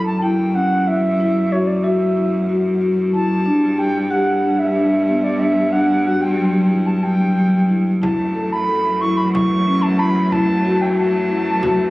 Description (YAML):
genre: contemporary instrumental, chamber music in an uneven meter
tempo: 184 BPM (eighths)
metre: 7/8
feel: straight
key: unclear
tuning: A4 = 442 Hz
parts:
  - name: bright reedy baroque flute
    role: melody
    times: 0.0-11.9 s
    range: C#5 to C#6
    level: -22 LUFS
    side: right 1 dB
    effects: none
  - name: marimba with soft mallets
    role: arpeggios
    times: 0.0-11.9 s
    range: F#3 to A4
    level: -18 LUFS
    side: left 1 dB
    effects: none
  - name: bright cello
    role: bass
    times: 0.0-11.9 s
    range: F#2 to G2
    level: -20 LUFS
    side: equal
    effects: none
  - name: clear symphonic string section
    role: sustained chords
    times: 8.0-11.9 s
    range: E3 to A3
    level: -25 LUFS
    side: equal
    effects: none
  - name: frame drum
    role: percussion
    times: 8.0-11.9 s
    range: none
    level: -26 LUFS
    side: equal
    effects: none
room: moderate recital hall reverb, RT60 1.5 s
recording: recorded on a phone in the room, club ambience, compression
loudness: -15 LUFS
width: side -18 dB against mid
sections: 0.0-11.9 A section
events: none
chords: 0.0 F#7(no3); 3.5 Gmaj7(no3); 8.0 F#m7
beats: 0.23 0.55 0.88 | 1.20 1.52 1.84 2.16 2.48 2.81 3.13 | 3.45 3.78 4.10 4.43 4.75 5.08 5.40 | 5.73 6.05 6.38 6.71 7.04 7.37 7.70 | 8.02 8.35 8.68 9.01 9.34 9.67 9.99 | 10.32 10.64 10.97 11.30 11.62